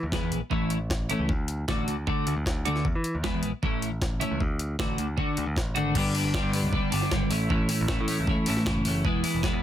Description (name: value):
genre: indie rock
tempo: 155 BPM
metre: 4/4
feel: straight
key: unclear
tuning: A4 = 440 Hz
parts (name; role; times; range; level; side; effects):
- modern bright picked electric bass; bass; 0.0-9.6 s; E1 to E3; -31 LUFS; equal; none
- twelve-string electric guitar; riff; 0.1-9.6 s; G2 to F#4; -26 LUFS; equal; double-tracked left and right
- jungle sampler-style drum kit; drums; 0.1-9.5 s; crash cymbal, hi-hat, kick drum, snare drum; -29 LUFS; equal; none
room: little or no reverb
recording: dense, heavily limited modern master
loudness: -24 LUFS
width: side -11 dB against mid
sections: 0.0-6.0 A section; 6.0-9.6 B section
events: none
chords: 0.0 E; 0.5 A; 1.3 D; 2.8 E; 3.6 A; 4.4 D; 6.0 G; 7.3 A; 9.0 E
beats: 0.13 0.52 0.90 | 1.29 1.68 2.07 2.46 | 2.85 3.24 3.62 4.01 | 4.40 4.79 5.18 5.57 | 5.95 6.34 6.73 7.12 | 7.50 7.89 8.28 8.66 | 9.05 9.43